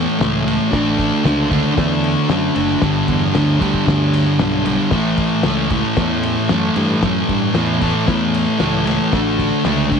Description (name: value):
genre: garage rock duo or trio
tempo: 114 BPM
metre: 4/4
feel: straight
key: A mixolydian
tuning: A4 = 441 Hz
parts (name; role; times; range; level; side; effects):
- thick fuzz guitar; riff; 0.0-10.0 s; G2 to D4; -16 LUFS; equal; distortion
- growling fingered electric bass; bass; 0.0-10.0 s; F#1 to G2; -22 LUFS; right 1 dB; overdrive
- cloth-damped thuddy drum kit; drums; 0.2-10.0 s; crash cymbal, kick drum, ride cymbal, snare drum; -23 LUFS; left 3 dB; none
room: small room ambience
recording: 1960s-style stereo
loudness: -14 LUFS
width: side -6 dB against mid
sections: 0.0-10.0 A section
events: none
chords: 0.0 A; 0.7 D/A; 2.8 G; 4.9 A; 9.1 D5/A